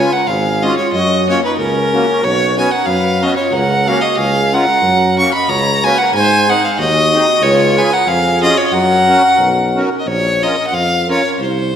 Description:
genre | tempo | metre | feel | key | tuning
alpine folk, alpine dance band | 92 BPM | 2/4 | swing 55% on 8ths | F# major | A4 = 440 Hz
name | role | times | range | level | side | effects
rich fiddle | melody | 0.0-11.8 s | A#4 to C#6 | -14 LUFS | equal | none
mellow trumpet | second line | 0.0-9.8 s | C#4 to E#5 | -20 LUFS | right 2 dB | none
accordion | accompaniment | 0.0-11.8 s | G#3 to A#4 | -20 LUFS | equal | light tremolo tuning
warm tuba | bass | 0.0-11.8 s | G#1 to G#2 | -18 LUFS | equal | none
room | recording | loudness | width
wet scoring stage reverb, RT60 1.5 s | recorded in a church or concert hall | -11 LUFS | side -8 dB against mid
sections
0.0-10.1 A section; 10.1-11.8 B section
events
none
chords
0.0 C#; 0.9 F#; 2.2 Bsus2; 3.5 F#/C#; 4.2 C#; 4.8 F#; 6.1 G#7; 7.4 C#; 8.7 F#; 10.1 Bbm

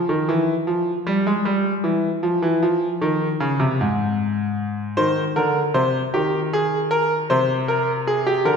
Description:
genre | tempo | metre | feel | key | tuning
classical, baroque-style two-part invention for grand piano | 51 BPM (dotted quarters) | 12/8 | straight | unclear | A4 = 440 Hz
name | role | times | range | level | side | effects
bright concert grand piano | solo | 0.0-8.6 s | Ab2 to C5 | -18 LUFS | equal | none
room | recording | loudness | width
wet scoring stage reverb, RT60 1.7 s | minimal, uncompressed stereo recording | -18 LUFS | side -6 dB against mid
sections
0.0-8.6 A section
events
none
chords
0.0 N.C.; 5.0 Cm; 7.3 Bb7sus2

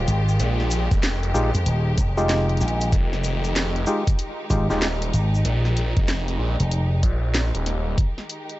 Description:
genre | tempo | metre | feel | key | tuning
glitch hop | 95 BPM | 4/4 | swing 64% on 16ths | F minor | A4 = 440 Hz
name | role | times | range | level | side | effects
clear studio string section | sustained chords | 0.0-8.6 s | Eb3 to G4 | -31 LUFS | left 1 dB | sidechain pumping
phased detuned saw bass | bass | 0.0-8.0 s | Eb1 to Bb1 | -23 LUFS | equal | phaser, overdrive
slap bass with an envelope filter | bass | 0.1-7.0 s | Eb1 to F2 | -20 LUFS | equal | none
drum and bass drum kit | drums | 0.1-8.6 s | hi-hat, snare drum | -28 LUFS | equal | none
tube shaker | percussion | 0.1-5.4 s | none | -38 LUFS | left 2 dB | none
electronic kick drum | drums | 0.9-8.1 s | none | -20 LUFS | equal | none
clav | stabs | 1.3-4.9 s | Ab3 to G4 | -27 LUFS | equal | sidechain pumping, tape echo
room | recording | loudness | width
little or no reverb | dry, gritty hardware recording, nothing above 7.9 kHz | -20 LUFS | side -17 dB against mid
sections
0.0-8.6 A section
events
none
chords
0.0 Fm9

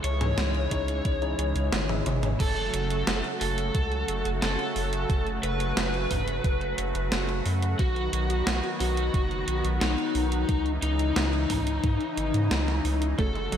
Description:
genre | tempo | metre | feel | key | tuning
synthwave | 89 BPM | 4/4 | straight | F# dorian | A4 = 438 Hz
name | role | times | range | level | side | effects
lead guitar through a small cranked amp | melody | 0.0-13.6 s | D#4 to C#5 | -30 LUFS | left 2 dB | overdrive, ping-pong delay, slapback echo
lush unison pad | sustained chords | 0.0-13.6 s | C#3 to F#4 | -32 LUFS | right 1 dB | chorus, sidechain pumping
round analog bass | bass | 0.0-13.6 s | F#1 to G#2 | -29 LUFS | equal | sidechain pumping
gated 80s digital drum machine | drums | 0.0-13.6 s | crash cymbal, hi-hat, snare drum, toms | -30 LUFS | right 1 dB | gated reverb, gated reverb snare
tine electric piano | stabs | 0.2-2.4, 13.2-13.3 s | C#4 to E5 | -36 LUFS | left 3 dB | overdrive, medium stereo tremolo, ping-pong delay, slapback echo
electronic kick drum | drums | 0.7-13.3 s | none | -27 LUFS | equal | none
wide unison pluck | arpeggios | 13.2-13.6 s | F#3 to A3 | -32 LUFS | right 4 dB | none
room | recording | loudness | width
moderate lush hall reverb, RT60 2.1 s | big arena sound | -24 LUFS | side -9 dB against mid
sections
0.0-2.4 A section; 2.4-13.6 B section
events
drum fill 1.7-2.4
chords
0.0 C#madd9; 2.4 F#m; 7.8 B; 10.5 C#madd9

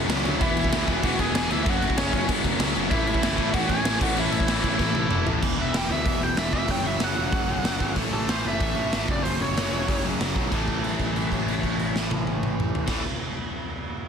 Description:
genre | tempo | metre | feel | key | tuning
punk rock | 189 BPM | 4/4 | straight | A major | A4 = 442 Hz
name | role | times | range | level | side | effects
distorted electric guitar | riff | 0.0-13.0 s | E2 to A3 | -30 LUFS | left 14 dB | distortion
overdriven electric guitar | riff | 0.0-13.0 s | E2 to A3 | -31 LUFS | right 14 dB | none
fuzz picked electric bass | bass | 0.0-13.0 s | E1 to D2 | -30 LUFS | equal | overdrive
raw garage drum kit | drums | 0.1-12.9 s | crash cymbal, hi-hat, kick drum, snare drum, toms | -26 LUFS | equal | none
biting lead guitar | melody | 0.4-10.0 s | C#4 to G#5 | -28 LUFS | equal | overdrive
thick fuzz guitar | riff | 0.4-5.4 s | A2 to G#4 | -31 LUFS | equal | none
room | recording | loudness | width
light reverb | dense, heavily limited modern master | -22 LUFS | side -7 dB against mid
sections
0.0-5.4 A section; 5.4-10.5 B section; 10.5-13.1 C section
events
drum fill 4.8-5.4; lead electric guitar solo 5.4-10.5; held note 10.5-12.9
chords
0.4 E; 1.7 F#m; 2.9 A; 5.4 E5; 6.7 F#5; 8.0 A5; 9.1 F#5; 10.5 A5

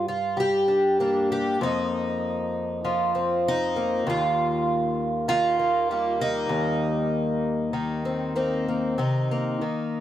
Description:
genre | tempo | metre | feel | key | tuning
folk, solo fingerstyle acoustic guitar | 98 BPM | 4/4 | rubato | C minor | A4 = 440 Hz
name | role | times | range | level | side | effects
fingerpicked twelve-string acoustic guitar | solo | 0.0-10.0 s | Eb2 to G4 | -22 LUFS | equal | none
room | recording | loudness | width
light reverb | dry, close 1970s-style studio recording | -22 LUFS | side -11 dB against mid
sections
0.0-9.0 A section; 9.0-10.0 B section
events
none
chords
0.0 Gm7; 1.6 F7sus4; 4.1 Eb; 6.5 Cm7/Eb; 9.0 Cm7

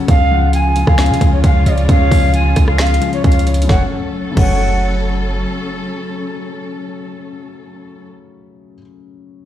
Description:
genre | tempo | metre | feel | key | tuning
hip hop, trap | 133 BPM | 4/4 | half-time | F# harmonic minor | A4 = 440 Hz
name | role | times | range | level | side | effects
felt-muted upright piano | accompaniment | 0.0-9.5 s | C#3 to C#5 | -22 LUFS | left 6 dB | low-pass filter
dark studio string section | sustained chords | 0.0-8.1 s | C#3 to A4 | -26 LUFS | right 1 dB | none
breathy mellow jazz flute | melody | 0.1-5.0 s | C#5 to G#5 | -20 LUFS | right 1 dB | low-pass filter, digital delay
warm 808-style bass | bass | 0.1-5.5 s | F#1 to C#3 | -15 LUFS | right 1 dB | none
trap drum kit | drums | 0.1-4.5 s | crash cymbal, finger snaps, hi-hat, kick drum, rim click, snare drum | -15 LUFS | right 1 dB | none
gliding portamento lead | second line | 0.3-5.0 s | C#5 to G#5 | -25 LUFS | right 2 dB | chorus, phaser, digital delay
room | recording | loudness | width
little or no reverb | played on a big sound system in a bare room, stone room reverb | -12 LUFS | side -11 dB against mid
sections
0.0-3.7 A section; 3.7-7.3 B section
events
none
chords
0.1 C#; 3.7 F#m

